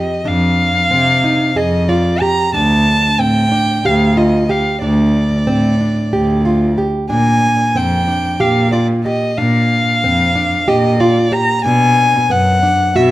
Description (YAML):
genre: contemporary instrumental, chamber music in an uneven meter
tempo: 184 BPM (eighths)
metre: 7/8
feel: straight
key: unclear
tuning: A4 = 440 Hz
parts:
  - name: dark violin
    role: melody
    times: 0.0-13.1 s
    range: D5 to Bb5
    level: -16 LUFS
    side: left 1 dB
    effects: none
  - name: nylon-string guitar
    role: arpeggios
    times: 0.0-13.1 s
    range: B3 to Ab4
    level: -18 LUFS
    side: right 2 dB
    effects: none
  - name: warm cello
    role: bass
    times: 0.0-13.1 s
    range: D2 to C3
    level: -15 LUFS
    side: equal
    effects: none
room: light reverb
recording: close, detailed microphones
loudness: -11 LUFS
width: side -15 dB against mid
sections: 0.0-13.1 A section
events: none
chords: 0.0 F7(no3); 2.5 D5; 7.1 Bb; 11.7 Bm